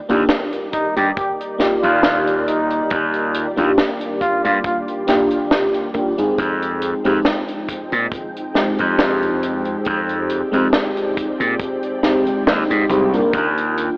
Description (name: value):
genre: vaporwave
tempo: 69 BPM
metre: 4/4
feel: swing 54% on 16ths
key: Eb major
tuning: A4 = 440 Hz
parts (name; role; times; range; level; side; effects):
- soft string machine; sustained chords; 0.0-14.0 s; Eb3 to G5; -27 LUFS; equal; phaser, ensemble chorus
- FM electric piano with soft pad layer; accompaniment; 0.1-14.0 s; Ab3 to D5; -20 LUFS; equal; analog chorus, analog delay
- gritty slap bass; bass; 0.1-13.9 s; C2 to Bb2; -19 LUFS; equal; overdrive
- tight funk drum kit; drums; 0.1-14.0 s; hi-hat, snare drum; -20 LUFS; equal; none
- warm flugelhorn; melody; 0.7-4.8 s; Eb4 to G4; -21 LUFS; equal; vintage 12-bit sampler grit, tape echo
- kick drum; drums; 0.7-13.5 s; none; -28 LUFS; equal; none
room: moderate lush hall reverb, RT60 2.5 s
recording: worn, warbling old tape, cassette tape, warbly pitch drift, AM radio sound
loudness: -16 LUFS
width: side -27 dB against mid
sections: 0.0-14.0 A section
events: none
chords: 0.0 Ebmaj7; 6.4 Fm9; 13.3 Ebmaj7